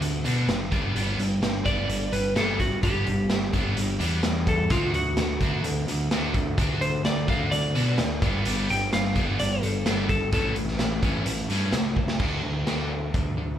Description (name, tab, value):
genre	classic rock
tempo	128 BPM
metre	4/4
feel	straight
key	D major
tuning	A4 = 439 Hz
part	clean lap steel guitar	melody	0.0-10.6 s	F4 to G5	-29 LUFS	equal	slapback echo
part	distorted electric guitar	riff	0.0-13.6 s	A2 to F#4	-30 LUFS	equal	distortion, slapback echo
part	growling picked electric bass	bass	0.0-13.6 s	F#1 to B2	-28 LUFS	equal	overdrive
part	raw garage drum kit	drums	0.0-13.3 s	crash cymbal, hi-hat, kick drum, snare drum	-27 LUFS	equal	none
room	little or no reverb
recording	live gig heard through the venue's PA, club reverb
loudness	-22 LUFS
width	side -10 dB against mid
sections	0.0-12.2 A section; 12.2-13.6 B section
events	electric slide guitar solo 0.0-12.2; drum fill 12.0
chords	0.0 D; 0.7 G; 4.7 D; 8.2 G; 10.3 A; 12.2 D